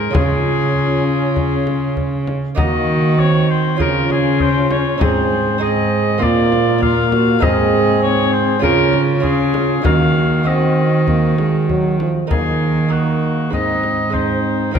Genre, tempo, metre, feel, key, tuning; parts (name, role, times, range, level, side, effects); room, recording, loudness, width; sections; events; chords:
classical, renaissance-style consort dance; 99 BPM; 4/4; straight; Eb dorian; A4 = 441 Hz
clear oboe; melody; 0.0-14.8 s; Gb4 to F5; -21 LUFS; left 4 dB
dark viola; second line; 0.0-14.8 s; Eb4 to Ab4; -24 LUFS; right 2 dB
lute; accompaniment; 0.0-14.8 s; Ab2 to F5; -23 LUFS; right 5 dB
dark cello; bass; 0.0-14.8 s; Ab2 to F3; -18 LUFS; right 3 dB
warm trombone; accompaniment; 0.1-14.8 s; F3 to Db4; -20 LUFS; left 3 dB
frame drum; percussion; 0.1-14.8 s; -23 LUFS; left 2 dB
wet church reverb, RT60 3.2 s; -13 LUFS; side -7 dB against mid
0.0-12.3 A section; 12.3-14.8 B section
0.1 Db; 2.6 Ebm; 3.8 Db; 5.0 Ab; 6.2 Bb; 7.4 Ab; 8.6 Db; 9.9 Ebm; 13.5 Ab